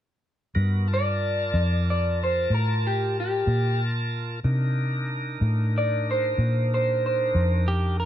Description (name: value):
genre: slow blues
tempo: 62 BPM (dotted quarters)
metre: 12/8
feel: straight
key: G minor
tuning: A4 = 440 Hz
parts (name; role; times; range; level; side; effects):
- bright tonewheel organ; sustained chords; 0.5-8.1 s; B3 to A5; -32 LUFS; left 1 dB; slow rotary speaker
- vintage muted fingered electric bass; bass; 0.6-8.1 s; F2 to C3; -24 LUFS; equal; none
- electric guitar through a small old amp; melody; 0.9-7.7 s; G4 to D5; -25 LUFS; right 1 dB; wide subtle chorus
- electric slide guitar; second line; 7.7-8.1 s; G4 to Bb4; -28 LUFS; right 3 dB; none
room: little or no reverb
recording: dark, warm production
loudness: -22 LUFS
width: side -11 dB against mid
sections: 0.6-8.1 A section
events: none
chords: 0.6 Gm9; 4.4 Cm9